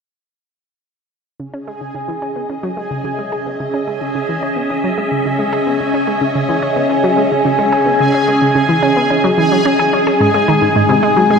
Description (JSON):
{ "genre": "ambient, sequencer-driven space music", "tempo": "109 BPM", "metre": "4/4", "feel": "straight", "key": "C# minor", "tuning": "A4 = 440 Hz", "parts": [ { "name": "phased string machine", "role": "sustained chords", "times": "1.4-11.4 s", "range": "G#3 to E5", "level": "-18 LUFS", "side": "equal", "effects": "ensemble chorus, phaser" }, { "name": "analog pluck", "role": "riff", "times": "1.4-11.4 s", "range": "G#2 to G#4", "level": "-18 LUFS", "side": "equal", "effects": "chorus, ping-pong delay" }, { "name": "bubbling stepped-filter texture", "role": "texture", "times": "1.7-11.4 s", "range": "G#4 to G#5", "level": "-17 LUFS", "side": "left 1 dB", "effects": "chorus, built-in reverb" } ], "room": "wet cathedral reverb, RT60 5.4 s", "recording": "in a vast, echoing space", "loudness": "-13 LUFS", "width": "side -6 dB against mid", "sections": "1.4-11.4 A section", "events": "fade-in on synth arpeggio sound 1.4-11.4; fade-in on string machine 1.4-11.4", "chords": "1.4 C#m; 10.2 G#", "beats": "| 1.40 1.95 2.50 3.05 | 3.60 4.15 4.70 5.25 | 5.80 6.35 6.90 7.45 | 8.00 8.55 9.10 9.65 | 10.20 10.76 11.30" }